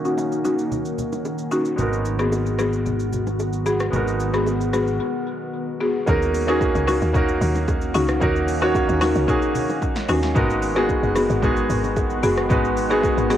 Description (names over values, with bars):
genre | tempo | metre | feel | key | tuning
amapiano | 112 BPM | 4/4 | straight | G# minor | A4 = 440 Hz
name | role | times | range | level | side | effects
clear baby grand piano | accompaniment | 0.0-13.4 s | G#3 to C#5 | -25 LUFS | right 2 dB | low-pass filter, cassette tape
deep dark ambient pad | sustained chords | 0.0-13.4 s | D#3 to F#4 | -28 LUFS | right 1 dB | chorus, built-in reverb, sidechain pumping, low-pass filter, cassette tape
buzzing marimba with medium mallets | stabs | 0.0-13.4 s | B3 to G#4 | -23 LUFS | left 2 dB | low-pass filter, cassette tape, tape echo
deep house drum kit | drums | 0.1-13.4 s | hi-hat, kick drum, rim click, shaker, snare drum | -27 LUFS | equal | cassette tape
bongos and congas | percussion | 0.2-13.4 s | none | -30 LUFS | right 2 dB | none
fingered electric bass | bass | 1.8-5.0 s | G#1 | -25 LUFS | equal | none
woody log drum bass | bass | 6.1-13.4 s | F#1 to D#2 | -24 LUFS | equal | none
room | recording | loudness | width
light reverb, digital ambience | home recording on cassette | -19 LUFS | side -11 dB against mid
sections
0.0-6.1 A section; 6.1-13.4 B section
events
filter sweep 0.0-6.1; break 5.0-6.1; drop 6.1-13.4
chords
0.0 D#m7; 1.8 G#m7; 6.1 D#m7; 10.4 G#m7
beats
0.18 0.72 1.25 | 1.79 2.32 2.86 3.39 | 3.93 4.47 5.00 5.54 | 6.07 6.61 7.14 7.68 | 8.22 8.75 9.29 9.82 | 10.36 10.89 11.43 11.97 | 12.50 13.04